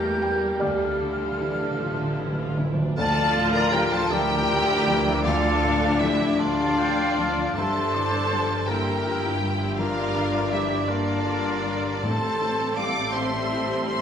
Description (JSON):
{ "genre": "cinematic, emotional film score for orchestra", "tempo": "53 BPM (dotted quarters)", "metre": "6/8", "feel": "uneven beats, rubato", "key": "D minor", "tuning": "A4 = 441 Hz", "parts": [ { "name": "warm symphonic violin section", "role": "melody", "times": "0.0-14.0 s", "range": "G4 to D6", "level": "-29 LUFS", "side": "left 2 dB", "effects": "none" }, { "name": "mellow clarinet", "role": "second line", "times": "0.0-14.0 s", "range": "D4 to D5", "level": "-33 LUFS", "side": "equal", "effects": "none" }, { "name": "mellow cor anglais", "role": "second line", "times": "0.0-14.0 s", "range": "A4 to A5", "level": "-31 LUFS", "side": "right 2 dB", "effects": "none" }, { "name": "rich symphonic violin section", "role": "second line", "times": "0.0-14.0 s", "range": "A3 to D5", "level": "-34 LUFS", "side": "left 1 dB", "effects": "none" }, { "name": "silver concert flute", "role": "second line", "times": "0.0-14.0 s", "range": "F4 to G6", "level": "-29 LUFS", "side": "equal", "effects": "none" }, { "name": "felt-muted upright piano", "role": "accompaniment", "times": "0.0-14.0 s", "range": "D2 to Bb5", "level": "-31 LUFS", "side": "left 3 dB", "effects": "none" }, { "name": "rich symphonic viola section", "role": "accompaniment", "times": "0.0-14.0 s", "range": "D3 to F4", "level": "-31 LUFS", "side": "equal", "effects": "none" }, { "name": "dark French horn section", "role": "sustained chords", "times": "0.0-14.0 s", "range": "D3 to G4", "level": "-31 LUFS", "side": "left 4 dB", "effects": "none" }, { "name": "rich symphonic cello section", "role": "bass", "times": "0.0-14.0 s", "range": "D2 to A3", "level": "-33 LUFS", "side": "right 1 dB", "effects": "none" }, { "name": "warm symphonic double bass section", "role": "bass", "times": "0.0-14.0 s", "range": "G1 to E2", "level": "-33 LUFS", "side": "right 3 dB", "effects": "none" }, { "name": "timpani", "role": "percussion", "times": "0.6-4.1, 12.0-13.1 s", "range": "A2 to D3", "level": "-30 LUFS", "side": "right 1 dB", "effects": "none" } ], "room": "wet recital hall reverb, RT60 1.4 s", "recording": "none", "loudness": "-21 LUFS", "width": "side -8 dB against mid", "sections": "0.0-3.0 A section; 3.0-14.0 B section", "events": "timpani fill 0.6-3.0", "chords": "0.0 Edim; 0.6 Dmadd9; 3.0 Dm; 7.5 Gm7; 12.0 Am7" }